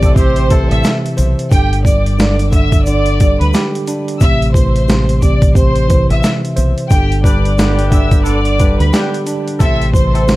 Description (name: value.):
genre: hip hop, boom-bap hip-hop.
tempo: 89 BPM.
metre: 4/4.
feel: swing 59% on 16ths.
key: G major.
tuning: A4 = 440 Hz.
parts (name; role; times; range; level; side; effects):
clear studio violin section; melody; 0.0-10.4 s; G4 to E6; -19 LUFS; equal; high-pass filter, low-pass filter, ping-pong delay.
tine electric piano; accompaniment; 0.0-10.4 s; C3 to E5; -18 LUFS; right 1 dB; medium stereo tremolo, cassette tape, high-pass filter, low-pass filter.
warm horn section; stabs; 0.0-1.0, 7.2-10.2 s; B3 to B4; -23 LUFS; left 2 dB; high-pass filter, low-pass filter, ping-pong delay.
deep dub fingered electric bass; bass; 0.0-10.4 s; G1 to D2; -15 LUFS; equal; none.
boom bap sampler-style drum kit; drums; 0.0-10.4 s; hi-hat, kick drum, snare drum; -13 LUFS; equal; none.
egg shaker; percussion; 0.0-10.4 s; none; -35 LUFS; left 5 dB; none.
room: small room ambience.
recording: vinyl crackle.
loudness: -10 LUFS.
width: side -18 dB against mid.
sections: 0.0-10.4 A section.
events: none.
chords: 0.0 Am; 1.5 G5; 4.2 Am; 6.9 G; 9.6 Am.